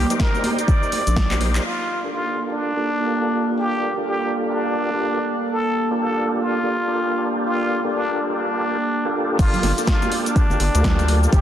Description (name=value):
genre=deep house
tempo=124 BPM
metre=4/4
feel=swing 61% on 16ths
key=G minor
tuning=A4 = 442 Hz
part: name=trumpet with plunger mute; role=melody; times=0.0-11.4 s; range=D4 to D5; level=-24 LUFS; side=equal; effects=vintage 12-bit sampler grit, tape echo
part: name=deep dark ambient pad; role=sustained chords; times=0.0-11.4 s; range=Bb3 to C6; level=-26 LUFS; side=right 2 dB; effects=chorus, built-in reverb, vintage 12-bit sampler grit, sidechain pumping
part: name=overdriven tonewheel organ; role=stabs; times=0.0-11.4 s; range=Bb3 to D5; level=-25 LUFS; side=equal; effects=chorus vibrato, slow rotary speaker, sidechain pumping, low-pass filter, tape echo
part: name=round analog bass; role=bass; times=0.0-1.6, 9.4-11.4 s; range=G1 to D2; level=-19 LUFS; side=equal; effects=sidechain pumping
part: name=punchy analog drum machine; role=drums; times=0.1-1.6, 9.4-11.4 s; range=crash cymbal, handclaps, hi-hat, shaker, snare drum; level=-28 LUFS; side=left 1 dB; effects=overdrive, low-pass filter on hats, low-pass filter on perc, low-pass filter on snare, low-pass filter on cymbals, low-pass filter on room
part: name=congas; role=percussion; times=0.1-1.4, 9.5-11.4 s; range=none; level=-28 LUFS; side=right 3 dB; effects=none
part: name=electronic kick drum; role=drums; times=0.2-1.3, 9.4-11.4 s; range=none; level=-18 LUFS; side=equal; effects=overdrive
room=moderate lush hall reverb, RT60 2.1 s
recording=dense, heavily limited modern master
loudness=-18 LUFS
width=side -10 dB against mid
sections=0.0-1.6 A section; 1.6-9.4 B section; 9.4-11.4 C section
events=drum fill 1.3-1.6; band accent 1.5; drop 9.4-11.4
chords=0.0 Cm9; 1.6 Gm9